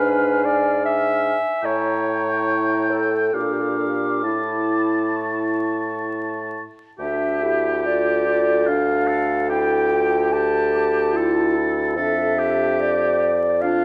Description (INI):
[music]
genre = classical, slow romantic movement for wind quintet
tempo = 64-76 BPM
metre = 3/4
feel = rubato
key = D minor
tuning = A4 = 440 Hz
[part]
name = mellow concert flute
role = melody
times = 0.0-13.8 s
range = D5 to D6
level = -26 LUFS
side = equal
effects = none
[part]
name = warm oboe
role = second line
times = 0.0-13.8 s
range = F4 to A5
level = -29 LUFS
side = equal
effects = none
[part]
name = mellow French horn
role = accompaniment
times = 0.0-13.8 s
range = D4 to A4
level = -28 LUFS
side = equal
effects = none
[part]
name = mellow clarinet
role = accompaniment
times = 0.0-13.8 s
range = D4 to E5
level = -27 LUFS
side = equal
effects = none
[part]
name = warm bassoon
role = bass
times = 0.0-13.8 s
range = D2 to Bb2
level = -27 LUFS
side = equal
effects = none
[sound]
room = moderate scoring stage reverb, RT60 1.9 s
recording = vinyl crackle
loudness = -21 LUFS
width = mono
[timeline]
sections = 0.0-7.0 A section; 7.0-13.8 B section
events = none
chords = 0.0 G#dim7; 1.6 A7b9; 3.3 Bb6; 4.2 A; 7.0 Dm; 12.0 Dm/F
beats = 0.05 0.84 | 1.64 2.48 3.34 | 4.24 5.16 6.08 | 6.99 7.85 8.67 | 9.51 10.33 11.15 | 11.97 12.81 13.63